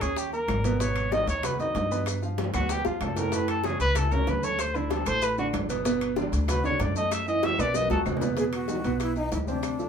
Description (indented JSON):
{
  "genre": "latin, salsa",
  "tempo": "190 BPM",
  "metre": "4/4",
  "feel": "straight",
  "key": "unclear",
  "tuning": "A4 = 440 Hz",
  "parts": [
    { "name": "warm trumpet", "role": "melody", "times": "0.0-8.0 s", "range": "E4 to E5", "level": "-28 LUFS", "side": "left 1 dB", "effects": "none" },
    { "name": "clear concert grand piano", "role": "accompaniment", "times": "0.0-9.9 s", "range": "A2 to C#6", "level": "-30 LUFS", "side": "right 3 dB", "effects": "none" },
    { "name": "upright bass", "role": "bass", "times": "0.0-9.9 s", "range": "G1 to G2", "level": "-30 LUFS", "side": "equal", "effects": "none" },
    { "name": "bongos", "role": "percussion", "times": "0.0-9.9 s", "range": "none", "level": "-36 LUFS", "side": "left 4 dB", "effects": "none" },
    { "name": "claves", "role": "percussion", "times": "0.0-9.8 s", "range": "none", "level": "-44 LUFS", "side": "left 6 dB", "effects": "none" },
    { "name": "congas", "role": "percussion", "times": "0.0-9.9 s", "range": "none", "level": "-35 LUFS", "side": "equal", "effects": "none" },
    { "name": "maracas", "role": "percussion", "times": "0.0-9.9 s", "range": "none", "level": "-41 LUFS", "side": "left 6 dB", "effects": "none" },
    { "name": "timbales", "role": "percussion", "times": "0.0-9.8 s", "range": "none", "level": "-38 LUFS", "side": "right 2 dB", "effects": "none" },
    { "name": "breathy mellow concert flute", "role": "melody", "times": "8.4-9.9 s", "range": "D4 to G#4", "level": "-32 LUFS", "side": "left 1 dB", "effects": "none" }
  ],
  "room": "wet small room ambience, RT60 0.5 s",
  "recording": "band playing live in one room",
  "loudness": "-24 LUFS",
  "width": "side -7 dB against mid",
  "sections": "0.0-8.4 A section; 8.4-9.9 B section",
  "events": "trumpet solo 0.0-8.4; drum fill 2.5-3.3, 7.6-8.4",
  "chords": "0.2 D#5; 0.8 G#m7; 2.1 G9; 3.3 F#m7; 4.6 D5; 5.8 Gmaj9; 7.1 F#m7; 7.7 B; 8.4 E5"
}